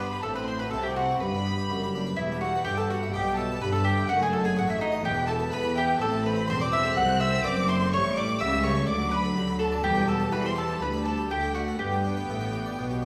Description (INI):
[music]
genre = classical, baroque-style concerto movement with solo episodes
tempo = 125 BPM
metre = 4/4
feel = straight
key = G major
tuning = A4 = 440 Hz
[part]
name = mandolin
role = melody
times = 0.0-13.1 s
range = D#4 to F#5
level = -31 LUFS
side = equal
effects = none
[part]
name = rich chamber violin section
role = melody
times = 0.0-13.1 s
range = D#5 to F#6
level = -40 LUFS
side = equal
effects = none
[part]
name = warm chamber violin section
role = second line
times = 0.0-13.1 s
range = D#5 to F#6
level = -37 LUFS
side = equal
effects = none
[part]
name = clear studio viola section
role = accompaniment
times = 0.0-13.1 s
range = F#3 to C4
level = -35 LUFS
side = equal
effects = none
[part]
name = harpsichord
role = accompaniment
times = 0.0-13.1 s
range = C2 to E5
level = -38 LUFS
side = equal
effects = none
[part]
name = rich chamber cello section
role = bass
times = 0.0-13.1 s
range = C2 to E3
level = -34 LUFS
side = equal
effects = none
[part]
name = rich chamber double bass section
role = bass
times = 0.0-13.1 s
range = E1 to E2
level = -36 LUFS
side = equal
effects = none
[sound]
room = wet recital hall reverb, RT60 1.4 s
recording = heard from further back in the room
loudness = -26 LUFS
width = mono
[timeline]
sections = 0.0-13.1 A section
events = none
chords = 0.2 F#dim/A; 1.2 G; 2.2 Em; 4.1 D#dim/F#; 5.1 E5; 6.0 Am; 7.9 A7; 8.9 D; 9.8 Em; 10.8 G/D; 11.3 D; 11.8 G